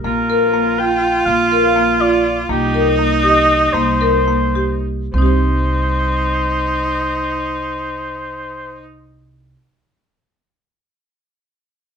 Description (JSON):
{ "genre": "contemporary instrumental, chamber music in an uneven meter", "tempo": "202-246 BPM (eighths)", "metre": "5/8", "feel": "straight", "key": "C minor", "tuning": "A4 = 438 Hz", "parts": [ { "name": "warm oboe", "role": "melody", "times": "0.0-8.8 s", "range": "G4 to G5", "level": "-19 LUFS", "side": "equal", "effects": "none" }, { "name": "clear viola", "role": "second line", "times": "0.0-8.8 s", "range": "Eb4 to F4", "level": "-21 LUFS", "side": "right 1 dB", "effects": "none" }, { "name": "marimba with medium hard mallets", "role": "arpeggios", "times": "0.0-9.6 s", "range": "Bb3 to C5", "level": "-18 LUFS", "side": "left 1 dB", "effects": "none" }, { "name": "upright bass", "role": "bass", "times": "0.0-9.5 s", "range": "Bb1 to C2", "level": "-21 LUFS", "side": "right 1 dB", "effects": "none" } ], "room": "moderate studio reverb, RT60 0.8 s", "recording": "minimal, uncompressed stereo recording", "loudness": "-14 LUFS", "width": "side -7 dB against mid", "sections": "0.0-5.1 A section; 5.1-8.1 B section", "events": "slowing down 2.5-5.1", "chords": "0.0 Bb5; 2.5 Cm7; 5.1 Cm" }